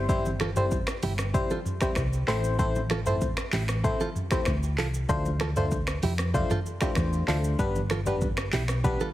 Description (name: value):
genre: afrobeats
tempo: 96 BPM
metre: 4/4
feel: straight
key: C major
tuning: A4 = 438 Hz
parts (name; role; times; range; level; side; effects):
- barking FM electric piano; accompaniment; 0.0-9.1 s; G3 to C5; -30 LUFS; left 3 dB; chorus
- hollow-body short-scale fingered electric bass; bass; 0.0-8.9 s; G1 to F2; -29 LUFS; equal; none
- afro-pop drum kit; drums; 0.1-9.1 s; finger snaps, handclaps, hi-hat, kick drum, rim click, shaker, toms; -29 LUFS; equal; none
- congas; percussion; 0.3-9.1 s; none; -36 LUFS; left 1 dB; none
- direct-recorded clean electric guitar; riff; 0.4-9.1 s; E4 to C5; -35 LUFS; right 7 dB; tape echo
room: light reverb, digital ambience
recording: heavily compressed radio sound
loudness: -24 LUFS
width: side -14 dB against mid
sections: 0.0-9.1 A section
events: none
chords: 0.0 C/G; 2.3 Am; 5.1 Dm7; 7.6 G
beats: | 0.09 0.71 1.34 1.97 | 2.59 3.21 3.84 4.46 | 5.09 5.71 6.34 6.96 | 7.59 8.21 8.84